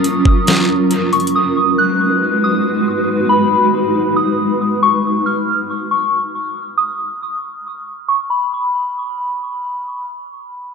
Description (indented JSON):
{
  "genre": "hip hop, atmospheric cloud-rap",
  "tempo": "138 BPM",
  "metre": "4/4",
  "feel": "half-time",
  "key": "G# dorian",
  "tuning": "A4 = 440 Hz",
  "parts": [
    { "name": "soft synth bell", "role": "melody", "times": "0.0-9.6 s", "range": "B5 to F#6", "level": "-17 LUFS", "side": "left 1 dB", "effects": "chorus, phaser, low-pass filter, dub echo" },
    { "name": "granular cloud pad", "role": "sustained chords", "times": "0.0-4.8 s", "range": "F#3 to B4", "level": "-16 LUFS", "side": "equal", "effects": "built-in reverb, sidechain pumping, low-pass filter" },
    { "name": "smooth R&B drum kit", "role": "drums", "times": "0.0-1.3 s", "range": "hi-hat, kick drum, snare drum", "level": "-16 LUFS", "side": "equal", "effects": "dub echo" }
  ],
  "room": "light reverb",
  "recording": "echo-heavy mix",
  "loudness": "-14 LUFS",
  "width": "side -5 dB against mid",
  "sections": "0.0-8.3 A section; 8.3-10.7 B section",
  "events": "filter sweep 0.0-8.3; kick muted 0.5-1.3",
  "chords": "0.0 F#maj7; 1.3 G#m7; 4.8 N.C."
}